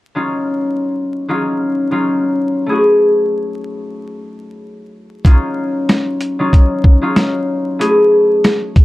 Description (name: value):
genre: hip hop, boom-bap hip-hop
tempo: 94 BPM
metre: 4/4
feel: swing 60% on 16ths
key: unclear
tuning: A4 = 439 Hz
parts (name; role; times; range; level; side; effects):
- concert harp; accompaniment; 0.1-8.8 s; Gb3 to Ab4; -14 LUFS; left 1 dB; high-pass filter, low-pass filter
- boom bap sampler-style drum kit; drums; 5.2-8.8 s; hi-hat, kick drum, snare drum; -9 LUFS; equal; none
room: moderate studio reverb, RT60 0.6 s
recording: dark, warm production, vinyl crackle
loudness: -12 LUFS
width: side -18 dB against mid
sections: 0.1-8.8 A section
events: none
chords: 0.1 Ebm9; 2.7 Gbm9; 5.3 Ebm9; 7.8 Gbm9